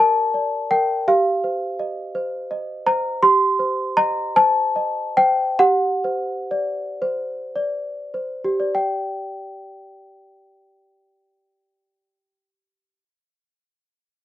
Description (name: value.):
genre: classical, lullaby for celesta.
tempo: 33-56 BPM (dotted quarters).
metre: 6/8.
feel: rubato.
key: G minor.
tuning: A4 = 436 Hz.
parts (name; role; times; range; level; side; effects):
worn celesta; solo; 0.0-14.2 s; G4 to D6; -18 LUFS; equal; none.
room: light reverb.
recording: none.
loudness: -18 LUFS.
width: side -13 dB against mid.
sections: 0.0-8.8 A section; 8.8-14.2 B section.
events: slowing down 2.2-8.8.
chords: 0.0 Gm; 1.1 Cm/G; 5.6 D7/G; 8.8 G5.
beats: | 1.07 2.15 | 3.23 4.36 | 5.59 7.02 | 8.75 10.57 | 12.37 14.19.